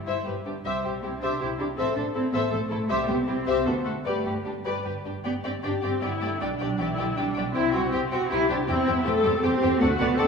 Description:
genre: quick classical-period movement for string orchestra.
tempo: 158 BPM.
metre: 3/4.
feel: rubato.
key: G major.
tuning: A4 = 440 Hz.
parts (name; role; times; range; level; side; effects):
muted studio cello section; bass; 0.0-10.3 s; D3 to G4; -28 LUFS; right 2 dB; none.
muted studio violin section; melody; 0.1-10.3 s; G4 to G5; -34 LUFS; left 4 dB; none.
muted studio violin section; second line; 0.1-10.3 s; D4 to D5; -31 LUFS; left 3 dB; none.
muted studio viola section; accompaniment; 0.1-10.3 s; C4 to A4; -29 LUFS; left 2 dB; none.
muted studio double bass section; bass; 0.1-10.3 s; G1 to E2; -33 LUFS; right 2 dB; none.
room: wet concert hall reverb, RT60 1.9 s.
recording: small room ambience.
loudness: -23 LUFS.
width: side -5 dB against mid.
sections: 0.0-5.2 A section; 5.2-10.3 B section.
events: none.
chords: 0.3 N.C.; 0.6 C; 1.8 Am; 2.9 C; 3.7 D; 4.1 G; 5.2 G5; 6.4 G/B; 7.5 C; 8.7 C/E.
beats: 0.26 | 0.65 1.03 1.40 | 1.77 2.15 2.52 | 2.89 3.27 3.66 | 4.05 4.45 4.85 | 5.25 5.63 6.02 | 6.40 6.79 7.17 | 7.55 7.92 8.30 | 8.68 9.05 9.43 | 9.81 10.18.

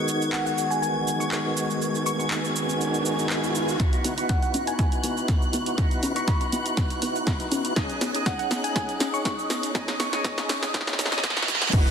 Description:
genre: deep house.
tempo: 121 BPM.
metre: 4/4.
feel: swing 53% on 16ths.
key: unclear.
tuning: A4 = 442 Hz.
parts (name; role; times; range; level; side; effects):
hollow soft pad; sustained chords; 0.0-11.9 s; E3 to G#5; -35 LUFS; right 1 dB; chorus, sidechain pumping.
percussive tonewheel organ; stabs; 0.0-11.9 s; D#3 to G#4; -28 LUFS; equal; overdrive, chorus vibrato, slow rotary speaker, sidechain pumping, ping-pong delay.
riser, reverse cymbal and impact; sound effects; 1.0-3.8, 11.0-11.9 s; none; -31 LUFS; right 2 dB; none.
string machine, violins; texture; 0.0-11.7 s; F#6 to G#6; -36 LUFS; equal; ensemble chorus, sidechain pumping.
punchy analog drum machine; drums; 0.1-11.9 s; crash cymbal, handclaps, hi-hat, shaker, snare drum; -29 LUFS; right 1 dB; none.
thumb-piano-like synth pluck; melody; 0.3-10.2 s; F#5 to C#6; -31 LUFS; left 1 dB; chorus, phaser, tape echo.
soft round pluck; arpeggios; 3.8-11.8 s; F#3 to E4; -34 LUFS; left 1 dB; chorus, sidechain pumping, tape echo.
electronic kick drum; drums; 3.8-11.8 s; none; -24 LUFS; equal; none.
woody FM bass; bass; 4.0-11.7 s; F#1 to C#2; -36 LUFS; equal; sidechain pumping, high-pass filter.
room: moderate lush hall reverb, RT60 2.6 s.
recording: dense, heavily limited modern master, high-pass filter.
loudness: -22 LUFS.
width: side -7 dB against mid.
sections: 0.0-3.8 A section; 3.8-11.7 B section.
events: riser 1.0-3.8; build-up 3.8-11.7; drum fill 3.8-11.7; filter sweep on synth pluck 3.8-11.7; filter sweep on synth arpeggio sound 3.8-11.7; filter sweep 3.8-11.7; reverse cymbal 11.0-11.7; impact 11.7.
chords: 0.0 G#m7/D#; 3.8 C#m11; 7.8 B69; 11.5 C#m11.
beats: 0.33 0.82 1.32 | 1.81 2.31 2.81 3.30 | 3.80 4.29 4.79 5.29 | 5.78 6.28 6.77 7.27 | 7.76 8.26 8.76 9.25 | 9.75 10.24 10.74 11.24 | 11.73.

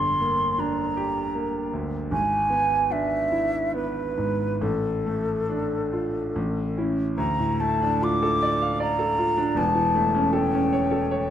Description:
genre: classical, romantic duo for flute and grand piano.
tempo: 67-81 BPM.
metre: 3/4.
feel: rubato.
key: D minor.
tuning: A4 = 440 Hz.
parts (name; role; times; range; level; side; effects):
mellow concert flute; melody; 0.0-11.3 s; A4 to D6; -24 LUFS; equal; none.
bright grand piano; accompaniment; 0.0-11.3 s; E1 to F5; -25 LUFS; right 1 dB; none.
room: moderate scoring stage reverb, RT60 1.6 s.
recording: close, detailed microphones.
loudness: -22 LUFS.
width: side -10 dB against mid.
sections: 0.0-7.2 A section; 7.2-11.3 B section.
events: none.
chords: 0.0 Gm; 2.1 E7/G#; 4.6 Dm/A; 6.4 A; 7.2 Dm; 9.6 A7/E.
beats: 0.59 1.36 | 2.13 2.92 3.76 | 4.62 5.51 6.36 | 7.19 8.03 8.82 | 9.56 10.34 11.12.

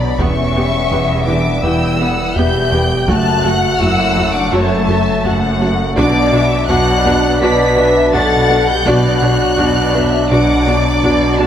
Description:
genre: cinematic, hybrid orchestral and electronic film score.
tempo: 83 BPM.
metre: 4/4.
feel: straight.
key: B minor.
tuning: A4 = 439 Hz.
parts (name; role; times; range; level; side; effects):
warm symphonic violin section; melody; 0.0-11.5 s; A5 to B6; -21 LUFS; equal; none.
warm studio violin section; second line; 0.0-11.5 s; C#5 to A5; -20 LUFS; left 4 dB; none.
mellow French horn section; sustained chords; 0.0-11.5 s; A3 to B4; -18 LUFS; left 4 dB; none.
warm trombone section; sustained chords; 0.0-11.5 s; D3 to D4; -20 LUFS; right 3 dB; none.
plucky analog bass; riff; 0.0-11.5 s; E2 to B3; -22 LUFS; right 1 dB; none.
rich symphonic cello section; bass; 0.0-11.5 s; E2 to B2; -21 LUFS; right 2 dB; none.
warm sub bass; bass; 0.0-11.5 s; E1 to B1; -26 LUFS; equal; none.
warm symphonic double bass section; bass; 0.0-11.5 s; E1 to B1; -21 LUFS; right 2 dB; none.
warm symphonic viola section; accompaniment; 0.2-11.5 s; A3 to G4; -22 LUFS; right 1 dB; none.
taiko ensemble; drums; 0.2-11.4 s; none; -25 LUFS; equal; none.
room: moderate scoring stage reverb, RT60 2.1 s.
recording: none.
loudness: -11 LUFS.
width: side -9 dB against mid.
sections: 0.0-11.5 A section.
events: none.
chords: 0.2 Em; 3.1 F#m; 6.0 Bm.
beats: | 0.19 0.91 1.64 2.36 | 3.08 3.81 4.53 5.25 | 5.97 6.70 7.42 8.14 | 8.87 9.59 10.31 11.04.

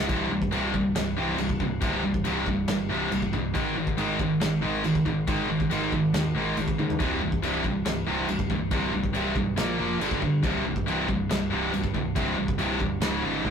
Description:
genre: heavy metal.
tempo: 139 BPM.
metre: 4/4.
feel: straight.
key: C minor.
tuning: A4 = 441 Hz.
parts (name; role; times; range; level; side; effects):
distorted electric guitar; riff; 0.0-13.5 s; C2 to Bb3; -29 LUFS; right 5 dB; overdrive.
scooped high-gain guitar; riff; 0.0-13.5 s; C2 to Bb3; -27 LUFS; left 2 dB; distortion.
modern bright picked electric bass; bass; 0.0-13.5 s; C1 to Ab2; -35 LUFS; equal; none.
modern studio drum kit; drums; 0.1-13.5 s; china cymbal, kick drum, snare drum, toms; -30 LUFS; equal; none.
room: moderate studio reverb, RT60 0.6 s.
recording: rough rehearsal-room recording, warm saturation.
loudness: -24 LUFS.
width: side -7 dB against mid.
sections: 0.1-13.5 A section.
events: drum fill 6.8.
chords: 0.1 C5; 3.5 Ab5; 7.0 C5; 9.6 Bb5; 10.0 G5; 10.4 C5; 13.0 Db5.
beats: | 0.09 0.52 0.96 1.39 | 1.82 2.25 2.68 3.11 | 3.55 3.98 4.41 4.84 | 5.27 5.70 6.13 6.57 | 7.00 7.43 7.86 8.29 | 8.72 9.15 9.58 10.01 | 10.44 10.87 11.30 11.73 | 12.16 12.59 13.02 13.45.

